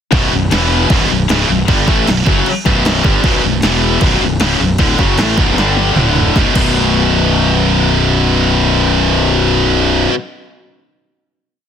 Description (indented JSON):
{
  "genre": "heavy metal",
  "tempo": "154 BPM",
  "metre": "4/4",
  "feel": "straight",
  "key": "B minor",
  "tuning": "A4 = 440 Hz",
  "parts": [
    { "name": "heavy high-gain guitar", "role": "riff", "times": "0.1-10.1 s", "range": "B1 to A3", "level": "-15 LUFS", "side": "left 11 dB", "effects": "distortion" },
    { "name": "heavy high-gain guitar", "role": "riff", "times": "0.1-10.1 s", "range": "B1 to A3", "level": "-15 LUFS", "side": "right 12 dB", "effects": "distortion" },
    { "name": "fuzz fingered electric bass", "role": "bass", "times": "0.1-10.1 s", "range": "B0 to A1", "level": "-17 LUFS", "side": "equal", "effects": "overdrive" },
    { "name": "punchy analog drum machine", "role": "drums", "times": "0.1-6.7 s", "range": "crash cymbal, kick drum, snare drum, toms", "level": "-16 LUFS", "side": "right 1 dB", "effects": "none" }
  ],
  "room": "little or no reverb",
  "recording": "dense, heavily limited modern master",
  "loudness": "-10 LUFS",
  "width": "side -8 dB against mid",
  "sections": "0.1-6.4 riff; 6.4-9.5 final chord",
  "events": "drum fill 5.6-6.4",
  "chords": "0.1 B5; 0.5 E5; 0.9 Bm; 3.6 E5; 4.0 Bm; 5.6 G5; 6.0 D5; 6.4 B5",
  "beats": "| 0.13 0.52 0.91 1.30 | 1.69 2.08 2.47 2.86 | 3.25 3.64 4.03 4.42 | 4.80 5.19 5.58 5.97 | 6.36 6.75 7.14 7.53 | 7.92 8.30 8.69 9.08"
}